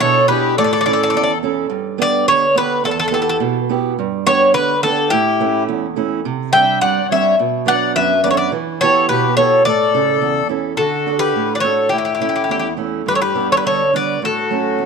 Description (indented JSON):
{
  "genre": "greek folk, Greek bouzouki band",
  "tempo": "106 BPM",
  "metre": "2/4",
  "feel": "straight",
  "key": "unclear",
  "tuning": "A4 = 438 Hz",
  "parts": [
    { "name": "Greek bouzouki", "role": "melody", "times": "0.0-14.9 s", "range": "G4 to G5", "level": "-15 LUFS", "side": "left 1 dB", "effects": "none" },
    { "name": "accordion", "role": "second line", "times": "0.0-1.4, 5.1-14.9 s", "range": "E4 to E5", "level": "-21 LUFS", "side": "left 13 dB", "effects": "none" },
    { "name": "fingerpicked acoustic archtop guitar", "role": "accompaniment", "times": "0.0-14.9 s", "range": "E2 to F#5", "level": "-20 LUFS", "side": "right 10 dB", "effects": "none" }
  ],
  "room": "moderate echo chamber reverb, RT60 1.6 s, small room ambience",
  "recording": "1960s-style stereo with parts hard left and right",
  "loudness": "-14 LUFS",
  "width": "side -5 dB against mid",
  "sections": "0.0-1.7 A section; 1.7-10.8 B section; 10.8-14.9 C section",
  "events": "none",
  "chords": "0.0 E7; 0.6 A; 1.7 G; 2.8 Em; 4.0 G; 5.1 A; 6.2 Csus2; 7.4 Bm; 8.5 Em; 9.6 A; 10.8 D; 11.9 A; 13.1 G; 14.2 A6",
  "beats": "0.01 | 0.58 1.14 | 1.71 2.28 | 2.84 3.41 | 3.97 4.54 | 5.11 5.67 | 6.24 6.81 | 7.38 7.94 | 8.51 9.08 | 9.65 10.22 | 10.79 11.36 | 11.93 12.50 | 13.07 13.64 | 14.22 14.79"
}